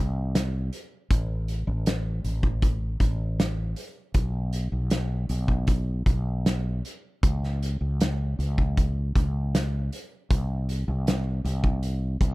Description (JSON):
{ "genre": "pop ballad", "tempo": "78 BPM", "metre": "4/4", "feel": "straight", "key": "unclear", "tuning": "A4 = 440 Hz", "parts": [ { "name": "fretless electric bass", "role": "bass", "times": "0.0-12.3 s", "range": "A1 to C#2", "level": "-26 LUFS", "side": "equal", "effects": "none" }, { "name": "loose indie drum kit", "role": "drums", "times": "0.4-12.3 s", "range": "hi-hat, kick drum, snare drum", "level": "-25 LUFS", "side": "equal", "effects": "none" } ], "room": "little or no reverb", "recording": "none", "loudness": "-24 LUFS", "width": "side -20 dB against mid", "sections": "0.0-12.3 A section", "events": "none", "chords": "none" }